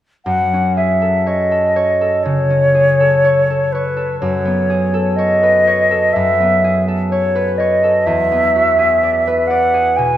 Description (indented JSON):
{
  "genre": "classical, impressionist duo for flute and harp",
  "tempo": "62 BPM",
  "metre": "4/4",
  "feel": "rubato",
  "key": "F# dorian",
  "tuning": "A4 = 441 Hz",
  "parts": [
    { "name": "mellow concert flute", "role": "melody", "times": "0.3-10.2 s", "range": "B4 to G#5", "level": "-14 LUFS", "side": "equal", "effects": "none" },
    { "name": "concert harp", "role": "accompaniment", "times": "0.3-10.2 s", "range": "E2 to D5", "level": "-17 LUFS", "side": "equal", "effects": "none" }
  ],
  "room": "wet scoring stage reverb, RT60 1.9 s",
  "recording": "none",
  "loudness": "-12 LUFS",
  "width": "side -12 dB against mid",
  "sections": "0.3-10.2 A section",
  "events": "none",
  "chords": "0.3 F#madd9; 4.2 Amaj9/F#; 8.1 E9"
}